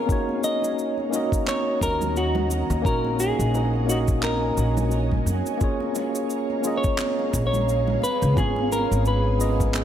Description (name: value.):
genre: sunset chillout.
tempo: 87 BPM.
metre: 4/4.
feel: swing 57% on 16ths.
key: Eb minor.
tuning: A4 = 440 Hz.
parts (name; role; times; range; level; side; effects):
semi-hollow electric guitar; melody; 0.0-9.8 s; Gb4 to Eb5; -27 LUFS; left 1 dB; dub echo.
tine electric piano; accompaniment; 0.0-9.8 s; Bb3 to Eb5; -27 LUFS; equal; auto-pan, tape echo.
ethereal airy pad; sustained chords; 0.0-9.8 s; Gb4 to Bb5; -32 LUFS; right 3 dB; ensemble chorus, built-in reverb, vintage 12-bit sampler grit.
cabasa and handclaps; drums; 0.1-9.8 s; none; -32 LUFS; right 1 dB; none.
electronic kick drum; drums; 0.1-9.7 s; none; -25 LUFS; equal; none.
congas and bongos; percussion; 0.3-9.8 s; none; -34 LUFS; right 1 dB; none.
upright bass; bass; 1.8-9.8 s; Ab1 to Gb2; -24 LUFS; equal; none.
room: light reverb, studio ambience.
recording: echo-heavy mix.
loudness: -21 LUFS.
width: side -10 dB against mid.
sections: 0.1-9.8 A section.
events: none.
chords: 0.1 Ebm7; 5.6 Bbm7; 8.0 Db7.